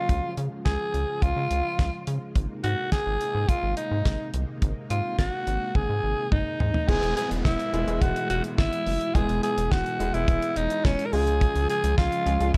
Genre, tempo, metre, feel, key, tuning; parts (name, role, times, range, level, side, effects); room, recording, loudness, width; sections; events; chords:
synth-pop; 106 BPM; 4/4; straight; A4 = 440 Hz
raspy alto saxophone; melody; 0.0-12.6 s; Db4 to Bb4; -30 LUFS; equal; slapback echo
string machine, cellos; sustained chords; 0.0-12.6 s; B2 to F4; -38 LUFS; equal; ensemble chorus
downlifter; sound effects; 0.4-2.4, 6.9-11.4 s; -43 LUFS; equal
rubbery square bass; bass; 0.1-12.6 s; E1 to Db3; -30 LUFS; equal
damped 70s drum kit; drums; 0.1-12.6 s; crash cymbal, hi-hat, kick drum, snare drum, toms; -27 LUFS; equal
warm grand piano; accompaniment; 6.9-12.6 s; G#3 to G#4; -35 LUFS; equal
light reverb, studio reverb; dark, warm production; -26 LUFS; mono
0.0-6.9 A section; 6.9-12.6 B section
drum fill 5.8-6.9
0.1 Db; 2.4 Abadd9; 6.9 E; 11.1 Db